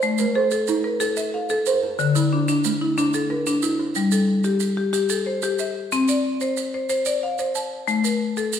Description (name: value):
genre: southern african traditional, mbira-style interlocking cycle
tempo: 122 BPM (dotted quarters)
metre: 12/8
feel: straight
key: G equiheptatonic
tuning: A4 = 440 Hz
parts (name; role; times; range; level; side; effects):
- kalimba; arpeggios; 0.0-4.1 s; D3 to E5-43c; -25 LUFS; right 6 dB; none
- marimba with hard mallets; arpeggios; 0.0-8.6 s; D3 to A5-29c; -21 LUFS; left 2 dB; none
- maracas; percussion; 0.0-8.6 s; none; -30 LUFS; right 8 dB; none
room: wet recital hall reverb, RT60 1.5 s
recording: recorded in a church or concert hall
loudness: -20 LUFS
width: side -8 dB against mid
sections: 0.0-4.0 A section; 4.0-8.6 B section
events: none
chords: 0.0 Am; 2.0 Dm; 4.0 G5; 5.9 N.C.; 7.9 Bbmaj7(no3)/A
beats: | 0.03 0.52 1.01 1.50 | 1.99 2.48 2.97 3.46 | 3.95 4.44 4.93 5.42 | 5.92 6.41 6.90 7.39 | 7.88 8.37